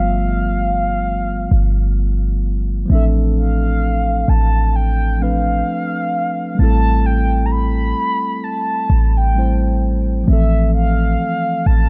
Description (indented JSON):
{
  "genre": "contemporary R&B",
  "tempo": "65 BPM",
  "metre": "4/4",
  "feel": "swing 58% on 16ths",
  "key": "unclear",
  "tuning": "A4 = 440 Hz",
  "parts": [
    { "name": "mellow horn-like synth lead", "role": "melody", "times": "0.0-11.9 s", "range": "E5 to B5", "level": "-24 LUFS", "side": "equal", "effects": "chorus" },
    { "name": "mellow tine electric piano", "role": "accompaniment", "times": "0.0-11.9 s", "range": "E3 to C5", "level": "-24 LUFS", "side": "equal", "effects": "none" },
    { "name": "clean 808-style bass", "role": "bass", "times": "0.0-11.9 s", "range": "G1 to A1", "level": "-18 LUFS", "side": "equal", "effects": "none" }
  ],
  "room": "digital ambience",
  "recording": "dark, warm production",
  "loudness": "-17 LUFS",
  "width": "mono",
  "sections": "0.0-2.9 A section; 2.9-11.9 B section",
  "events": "none",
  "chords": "0.0 G9; 2.9 Dm7/A; 6.6 Am7; 10.3 Fmaj7/A"
}